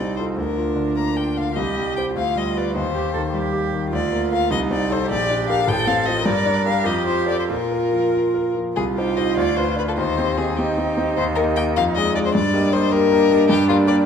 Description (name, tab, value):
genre	quick classical-period movement for piano trio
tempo	101 BPM (dotted quarters)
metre	6/8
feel	rubato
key	Bb major, C minor from 8.8 s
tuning	A4 = 440 Hz
part	rich violin	melody	0.0-14.0 s	F4 to Bb5	-23 LUFS	left 8 dB	none
part	warm cello	second line	0.0-14.1 s	D4 to Bb4	-23 LUFS	right 5 dB	none
part	bright concert grand piano	accompaniment	0.0-14.1 s	A1 to Eb5	-21 LUFS	left 1 dB	none
room	wet recital hall reverb, RT60 1.5 s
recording	dark, warm production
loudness	-18 LUFS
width	side -7 dB against mid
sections	0.0-8.8 A section; 8.8-14.1 B section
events	none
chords	0.4 Bb/D; 1.6 Cm; 2.2 G7/D; 2.8 Cm/Eb; 3.9 Bb/D; 4.5 Adim/C; 5.1 Gm/Bb; 5.7 F/A; 6.3 Gm; 6.9 F; 7.5 Bb5; 8.8 Cm; 9.4 Bdim/D; 10.0 Cm/Eb; 11.2 Eb; 11.7 Ddim/F; 12.3 Eb/G; 13.5 Gm